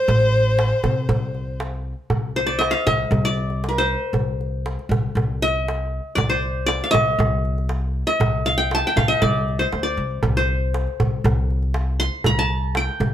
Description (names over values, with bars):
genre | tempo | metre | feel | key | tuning
Arabic maqam ensemble | 118 BPM | 4/4 | straight | C maqam rast | A4 = 439 Hz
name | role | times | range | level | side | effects
qanun | melody | 0.0-13.1 s | Bb4+50c to C6 | -22 LUFS | left 1 dB | none
rich violin | second line | 0.0-1.6 s | C5 | -21 LUFS | left 1 dB | none
upright bass | bass | 0.1-13.1 s | A1 to C3 | -23 LUFS | equal | none
darbuka | percussion | 0.1-13.1 s | none | -24 LUFS | right 1 dB | none
room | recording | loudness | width
light reverb | band playing live in one room | -18 LUFS | side -10 dB against mid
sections
0.0-2.1 A section; 2.1-13.1 B section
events
none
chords
none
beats
| 0.08 0.58 1.09 1.60 | 2.11 2.61 3.12 3.63 | 4.14 4.64 5.15 5.66 | 6.17 6.68 7.18 7.69 | 8.20 8.71 9.21 9.72 | 10.23 10.74 11.24 11.75 | 12.26 12.76